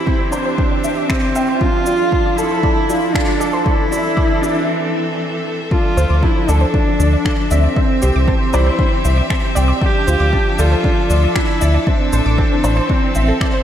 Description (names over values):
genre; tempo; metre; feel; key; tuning
piano and strings electronica; 117 BPM; 4/4; straight; D minor; A4 = 440 Hz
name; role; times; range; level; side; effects
dark cello; melody; 0.0-13.6 s; C4 to G4; -20 LUFS; equal; ping-pong delay
bright string quartet; sustained chords; 0.0-13.6 s; E3 to E5; -24 LUFS; equal; none
clear upright piano; riff; 0.0-13.6 s; C4 to G5; -21 LUFS; right 1 dB; ensemble chorus, ping-pong delay
electronic kick drum; drums; 0.1-13.5 s; none; -18 LUFS; equal; overdrive
wide unison pluck; arpeggios; 0.2-13.6 s; D4 to D6; -27 LUFS; right 1 dB; sidechain pumping, ping-pong delay
electronic shaker and finger snaps; drums; 0.3-13.5 s; none; -27 LUFS; left 1 dB; overdrive, high-pass filter on perc, high-pass filter on snare
round analog bass; bass; 6.0-13.3 s; A1 to D2; -14 LUFS; equal; sidechain pumping
room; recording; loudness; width
moderate lush hall reverb, RT60 1.8 s, studio reverb; dreamy mix soaked in reverb; -13 LUFS; side -10 dB against mid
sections
0.0-5.7 A section; 5.7-13.6 B section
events
build-up 0.0-5.7; break 4.7-5.7; drop 5.7-13.6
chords
0.0 C; 1.6 Dmadd9; 3.7 Am; 5.7 Dmadd9; 7.8 C; 9.8 Dmadd9; 11.9 Am